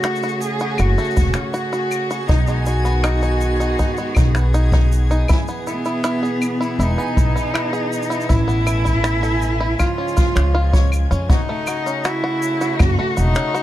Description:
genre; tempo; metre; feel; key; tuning
folktronica; 80 BPM; 4/4; straight; F# dorian; A4 = 440 Hz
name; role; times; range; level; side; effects
warm cello; melody; 0.0-13.6 s; B3 to G#4; -23 LUFS; equal; tape echo, plate reverb
dark string quartet; sustained chords; 0.0-13.6 s; B2 to G#4; -27 LUFS; right 1 dB; plate reverb
bluegrass banjo; arpeggios; 0.0-13.6 s; G#3 to C#5; -26 LUFS; equal; vintage 12-bit sampler grit, tape echo, plate reverb
shaker, finger snaps and claves; drums; 0.0-13.6 s; none; -29 LUFS; left 1 dB; none
backwards swelling texture; texture; 0.3-11.3 s; G#5 to G#6; -34 LUFS; right 1 dB; built-in reverb, plate reverb
upright bass; bass; 0.8-13.3 s; E1 to E#2; -18 LUFS; equal; none
kick drum; drums; 1.2-12.9 s; none; -18 LUFS; equal; none
room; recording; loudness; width
light reverb; dark, warm production; -16 LUFS; side -13 dB against mid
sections
0.0-11.3 A section; 11.3-13.6 B section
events
none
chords
0.0 F#madd9; 2.3 B6; 5.3 E; 8.3 Asus2; 9.8 C#; 11.3 F#m

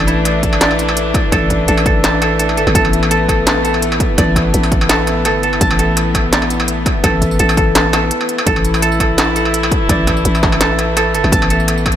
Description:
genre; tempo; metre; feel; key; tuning
half-time drum and bass; 168 BPM; 4/4; swing 54% on 16ths, half-time; unclear; A4 = 440 Hz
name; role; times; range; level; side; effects
warm studio string section; sustained chords; 0.0-12.0 s; E3 to E4; -19 LUFS; left 1 dB; sidechain pumping
koto; arpeggios; 0.0-12.0 s; E4 to A5; -18 LUFS; right 1 dB; vintage 12-bit sampler grit, dub echo
growling 808-style bass; bass; 0.0-12.0 s; G1 to A1; -17 LUFS; equal; none
industrial drum kit; drums; 0.0-12.0 s; hi-hat, snare drum, struck metal, tambourine; -18 LUFS; equal; none
electronic kick drum; drums; 0.4-11.9 s; none; -17 LUFS; equal; none
room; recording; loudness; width
light reverb; none; -11 LUFS; side -10 dB against mid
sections
0.0-8.5 A section; 8.5-12.0 A section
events
drop 0.0-8.5, 8.5-12.0; break 8.1-8.5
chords
0.0 A5

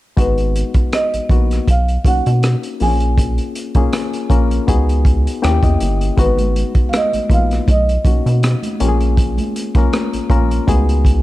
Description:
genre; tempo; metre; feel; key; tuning
R&B, neo-soul; 80 BPM; 4/4; swing 55% on 16ths; G# dorian; A4 = 440 Hz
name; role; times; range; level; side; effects
marimba with soft mallets; melody; 0.2-11.2 s; B4 to G#5; -21 LUFS; right 2 dB; none
reed electric piano; accompaniment; 0.2-11.2 s; G#3 to G5; -21 LUFS; left 6 dB; none
rubbery square bass; bass; 0.2-11.2 s; G1 to B2; -16 LUFS; equal; none
crunchy breakbeat drum kit; drums; 0.2-11.2 s; hi-hat, kick drum, rim click; -17 LUFS; equal; none
congas; percussion; 6.4-10.9 s; none; -27 LUFS; right 4 dB; none
room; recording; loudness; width
little or no reverb; dark, warm production; -13 LUFS; side -16 dB against mid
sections
0.2-11.2 A section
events
reed electric piano fill 5.1-6.2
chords
0.2 G#m9; 1.7 Bmaj9; 2.8 A#m7; 4.7 C#9sus4; 5.4 D#7b9; 6.2 G#m9; 7.7 Bmaj9; 8.8 A#m7; 10.7 C#9sus4

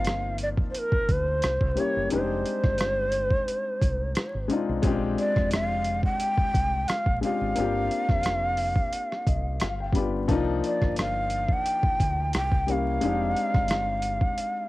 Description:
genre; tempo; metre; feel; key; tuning
R&B, neo-soul; 88 BPM; 4/4; swing 53% on 16ths; C minor; A4 = 441 Hz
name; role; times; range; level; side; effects
breathy shakuhachi; melody; 0.0-14.7 s; Bb4 to G5; -27 LUFS; equal; cassette tape
warm baby grand piano; accompaniment; 0.0-14.7 s; F3 to B5; -30 LUFS; left 4 dB; none
deep dub fingered electric bass; bass; 0.0-14.2 s; F1 to D2; -31 LUFS; equal; none
boom bap sampler-style drum kit; drums; 0.0-14.5 s; hi-hat, kick drum, rim click; -26 LUFS; equal; overdrive, cassette tape
room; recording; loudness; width
small room ambience; home recording on cassette, vinyl crackle; -23 LUFS; side -18 dB against mid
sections
0.0-14.7 A section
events
grand piano fill 8.9-10.3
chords
0.0 Cm11; 1.4 C7b9; 2.1 Fm9; 4.8 Bb7; 7.6 G7sus4; 9.6 G7; 10.3 Cm11; 12.3 C7b9; 13.0 Fm9

